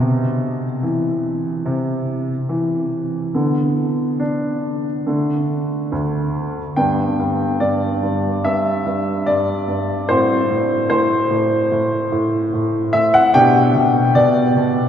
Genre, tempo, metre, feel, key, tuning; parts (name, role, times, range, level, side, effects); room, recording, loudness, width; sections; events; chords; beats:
classical-period piano sonatina; 72 BPM; 4/4; straight; G major; A4 = 441 Hz
clear baby grand piano; solo; 0.0-14.9 s; D2 to G5; -16 LUFS; equal
wet cathedral reverb, RT60 5.9 s; heard from further back in the room; -16 LUFS; side -9 dB against mid
0.0-6.8 A section; 6.8-14.9 B section
0.0 C; 3.3 Bm/D; 5.1 D5; 6.8 G; 10.1 F#dim/A; 13.3 G/B
| 0.01 0.83 1.65 2.49 | 3.35 4.20 5.06 5.92 | 6.77 7.60 8.44 9.27 | 10.09 10.91 11.72 12.54 | 13.35 14.16